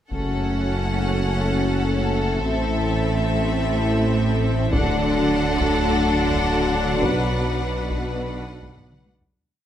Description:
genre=cinematic, hybrid orchestral and electronic film score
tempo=104 BPM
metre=4/4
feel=straight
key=F# minor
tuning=A4 = 440 Hz
part: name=rich symphonic violin section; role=melody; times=0.1-9.1 s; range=E5 to F#5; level=-30 LUFS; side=left 1 dB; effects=none
part: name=clear symphonic violin section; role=second line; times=0.1-9.1 s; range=A4 to B4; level=-29 LUFS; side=left 3 dB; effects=none
part: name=clear symphonic viola section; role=accompaniment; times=0.1-9.1 s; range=C4 to D4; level=-29 LUFS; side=right 1 dB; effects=none
part: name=hollow soft pad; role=sustained chords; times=0.1-9.3 s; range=F#3 to B4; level=-28 LUFS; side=left 1 dB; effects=chorus
part: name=mellow French horn section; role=sustained chords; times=0.1-9.1 s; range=F#3 to D4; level=-29 LUFS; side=left 5 dB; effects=none
part: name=dark tuba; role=bass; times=0.1-9.2 s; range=F#1 to D2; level=-28 LUFS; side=right 3 dB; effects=none
part: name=rich symphonic cello section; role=bass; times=0.1-9.2 s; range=F#2 to D3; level=-29 LUFS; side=right 1 dB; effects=none
part: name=rich symphonic double bass section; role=bass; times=0.1-9.1 s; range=F#1 to D2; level=-28 LUFS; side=right 2 dB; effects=none
part: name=saturated sub bass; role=bass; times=0.1-9.3 s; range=D1 to B1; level=-30 LUFS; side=equal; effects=none
part: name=taiko ensemble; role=drums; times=0.1-1.2, 4.7-9.5 s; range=none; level=-29 LUFS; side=left 1 dB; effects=none
room=light reverb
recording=none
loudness=-19 LUFS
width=side -10 dB against mid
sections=0.1-9.3 theme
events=fade-out 7.0-9.3; drum fill 8.8-9.3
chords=0.1 F#m; 2.4 Am; 4.7 D; 7.0 Bm

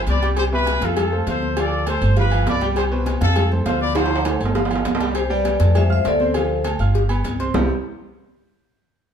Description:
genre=latin, salsa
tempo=201 BPM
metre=4/4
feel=straight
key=unclear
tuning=A4 = 440 Hz
part: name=clear grand piano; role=accompaniment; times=0.0-7.7 s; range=B2 to F6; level=-26 LUFS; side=right 2 dB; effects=none
part: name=upright bass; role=bass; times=0.0-7.7 s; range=G1 to F2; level=-20 LUFS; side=equal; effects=none
part: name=mellow trumpet section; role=melody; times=0.1-4.2 s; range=F4 to D5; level=-24 LUFS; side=equal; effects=none
part: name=agogo bells and timbales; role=percussion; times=0.1-7.6 s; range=none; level=-27 LUFS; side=right 5 dB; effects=none
part: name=congas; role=percussion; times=0.1-7.6 s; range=none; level=-30 LUFS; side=left 2 dB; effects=none
part: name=cowbell and bongos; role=percussion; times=0.1-7.6 s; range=none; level=-28 LUFS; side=left 5 dB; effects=none
part: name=vibraphone with medium mallets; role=melody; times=5.2-7.7 s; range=G4 to E5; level=-22 LUFS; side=left 2 dB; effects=none
room=moderate large studio reverb, RT60 1.1 s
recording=band playing live in one room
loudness=-17 LUFS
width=side -8 dB against mid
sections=0.0-5.2 A section; 5.2-7.5 B section; 7.5-8.7 C section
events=drum fill 4.0-5.2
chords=0.4 Cmaj7; 1.0 F; 1.6 Dm7; 2.2 G7; 2.8 C5; 3.4 F; 4.0 Dm7; 4.6 G7sus4; 5.2 C5; 5.8 F; 6.3 Dm7; 6.9 G7; 7.5 Cmaj7

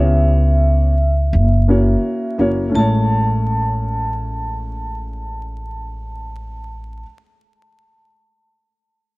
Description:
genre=hip hop, jazz-hop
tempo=85 BPM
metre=4/4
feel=swing 66% on 16ths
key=A major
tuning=A4 = 445 Hz
part: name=vibraphone with hard mallets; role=melody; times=0.0-7.0 s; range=E5 to A5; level=-24 LUFS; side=equal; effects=analog delay
part: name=dark concert grand piano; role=accompaniment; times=0.0-7.0 s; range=G#3 to C#5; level=-20 LUFS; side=equal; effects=none
part: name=upright bass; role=bass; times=0.0-7.0 s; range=F#1 to C#2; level=-17 LUFS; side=equal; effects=none
room=light reverb, small room ambience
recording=dark, warm production, vinyl crackle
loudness=-14 LUFS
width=side -24 dB against mid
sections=0.0-2.7 A section; 2.7-5.6 B section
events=none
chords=0.0 C#m7b5; 1.3 F#7; 2.7 Amaj7

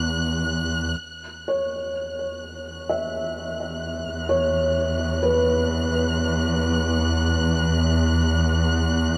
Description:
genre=ambient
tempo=64 BPM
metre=4/4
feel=straight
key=unclear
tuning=A4 = 437 Hz
part: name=muted chamber cello section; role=bass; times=0.0-9.2 s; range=E2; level=-26 LUFS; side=equal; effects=none
part: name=dark chamber violin section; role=texture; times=0.0-9.2 s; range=F#6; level=-32 LUFS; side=equal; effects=none
part: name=felt-muted upright piano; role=arpeggios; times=1.5-9.2 s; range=B4 to E5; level=-28 LUFS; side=equal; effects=delay
room=moderate huge ambient reverb, RT60 6.9 s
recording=none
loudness=-23 LUFS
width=mono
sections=0.0-1.0 A section; 1.0-9.2 B section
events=fade-in on felt piano 1.0-9.2; fade-in on cello section 1.0-9.2; fade-in on violin section 1.0-9.2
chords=0.0 Esus2

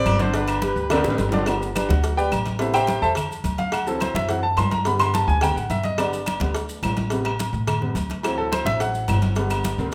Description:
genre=latin, salsa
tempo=213 BPM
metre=4/4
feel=straight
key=G major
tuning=A4 = 442 Hz
part: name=brilliant trumpet section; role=melody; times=0.0-1.2 s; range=G4 to D5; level=-29 LUFS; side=equal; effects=none
part: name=bright upright piano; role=accompaniment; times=0.0-9.9 s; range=C3 to C6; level=-26 LUFS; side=equal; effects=none
part: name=upright bass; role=bass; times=0.0-9.9 s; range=G1 to A2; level=-28 LUFS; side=equal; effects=none
part: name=claves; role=percussion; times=0.1-9.7 s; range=none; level=-36 LUFS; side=equal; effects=none
part: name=congas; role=percussion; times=0.1-9.9 s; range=none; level=-32 LUFS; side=equal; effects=none
part: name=cowbell and bongos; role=percussion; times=0.1-9.8 s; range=none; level=-34 LUFS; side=equal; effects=none
part: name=maracas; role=percussion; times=0.1-9.9 s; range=none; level=-44 LUFS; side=equal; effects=none
part: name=timbales and agogo bells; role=percussion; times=0.1-9.9 s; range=none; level=-31 LUFS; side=equal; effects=none
room=moderate large studio reverb, RT60 0.9 s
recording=none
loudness=-22 LUFS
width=mono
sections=0.0-1.5 A section; 1.5-9.9 B section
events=drum fill 0.9-1.5, 9.8; upright piano solo 1.5-9.9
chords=0.3 G; 2.6 Am7; 3.7 D7; 4.9 G; 7.1 Am7; 8.2 D7; 9.4 G

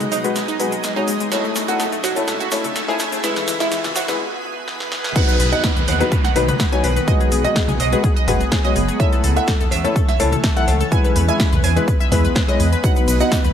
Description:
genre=progressive house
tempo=125 BPM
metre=4/4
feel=straight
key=B mixolydian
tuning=A4 = 441 Hz
part: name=shimmering ambient pad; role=sustained chords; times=0.0-13.5 s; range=C#2 to E5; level=-26 LUFS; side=right 2 dB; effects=chorus, built-in reverb, sidechain pumping
part: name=analog pluck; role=arpeggios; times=0.0-13.5 s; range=E3 to G#5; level=-23 LUFS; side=equal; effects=chorus, sidechain pumping, ping-pong delay
part: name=big-room dance drum kit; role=drums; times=0.0-13.5 s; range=crash cymbal, hi-hat, ride cymbal, snare drum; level=-25 LUFS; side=equal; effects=high-pass filter on hats, high-pass filter on snare, high-pass filter on cymbals, high-pass filter on room
part: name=congas and cowbell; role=percussion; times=0.0-12.5 s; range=none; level=-29 LUFS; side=left 1 dB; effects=sidechain pumping on perc
part: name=egg shaker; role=percussion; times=0.0-4.2, 12.8-13.5 s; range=none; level=-33 LUFS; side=right 3 dB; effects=none
part: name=riser and downlifter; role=sound effects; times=1.5-9.0 s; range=none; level=-30 LUFS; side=right 4 dB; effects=none
part: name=felt-muted upright piano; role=stabs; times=0.2-13.3 s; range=F#3 to F#5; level=-23 LUFS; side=left 3 dB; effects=sidechain pumping, ping-pong delay
part: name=electronic kick drum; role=drums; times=5.2-13.4 s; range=none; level=-18 LUFS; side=equal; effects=overdrive
part: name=dark detuned saw bass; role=bass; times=5.4-13.5 s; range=F#1 to E2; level=-20 LUFS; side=equal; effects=sidechain pumping
room=light reverb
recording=high-pass filter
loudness=-16 LUFS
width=side -9 dB against mid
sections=0.0-5.2 A section; 5.2-13.5 B section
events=build-up 0.0-5.2; drum fill 0.0-4.2, 4.7-5.2; filter sweep on ambient pad 0.0-5.2; filter sweep 0.0-5.2; break 4.2-5.2; drop 5.2-13.5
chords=0.0 G#m7/B; 1.3 A/C#; 3.2 E; 5.2 B; 7.1 G#m7/B; 9.0 A/C#; 10.9 E; 12.8 B

